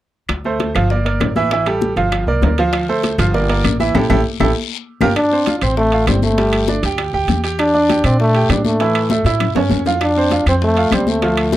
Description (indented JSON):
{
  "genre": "latin, salsa",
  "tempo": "198 BPM",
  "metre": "4/4",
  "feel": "straight",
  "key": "D minor",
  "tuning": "A4 = 442 Hz",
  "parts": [
    { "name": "upright bass", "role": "bass", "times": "0.3-11.6 s", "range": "G1 to Bb2", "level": "-19 LUFS", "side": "equal", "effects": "none" },
    { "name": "bongos", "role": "percussion", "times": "0.3-11.6 s", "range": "none", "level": "-24 LUFS", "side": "left 8 dB", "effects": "none" },
    { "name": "claves", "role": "percussion", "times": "0.3-11.5 s", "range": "none", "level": "-28 LUFS", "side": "left 4 dB", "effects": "none" },
    { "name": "congas", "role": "percussion", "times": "0.3-11.6 s", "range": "none", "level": "-23 LUFS", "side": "left 3 dB", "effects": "none" },
    { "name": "timbales", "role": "percussion", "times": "0.3-11.5 s", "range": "none", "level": "-25 LUFS", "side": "right 9 dB", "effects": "none" },
    { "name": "bright grand piano", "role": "accompaniment", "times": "0.5-11.6 s", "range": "E3 to G5", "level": "-19 LUFS", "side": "right 3 dB", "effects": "none" },
    { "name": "guiro", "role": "percussion", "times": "2.7-11.6 s", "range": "none", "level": "-30 LUFS", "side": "left 18 dB", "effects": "none" },
    { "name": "warm trombone", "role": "melody", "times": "5.2-11.6 s", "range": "G3 to D4", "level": "-16 LUFS", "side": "left 1 dB", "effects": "none" }
  ],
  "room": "light reverb",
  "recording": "dry, close 1970s-style studio recording",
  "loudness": "-13 LUFS",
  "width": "side -14 dB against mid",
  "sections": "0.3-5.2 A section; 5.2-11.6 B section",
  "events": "band accent 3.9-5.2; drum fill 9.1-10.0",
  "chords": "0.3 Dm7; 0.9 Gmadd9; 1.5 A5; 2.1 Gm7; 2.7 Dm7; 3.3 Gmadd9; 3.9 A5; 4.6 Gm7; 5.2 Dm7; 6.4 Gsus2; 7.6 Em7b5; 8.8 A; 10.0 F"
}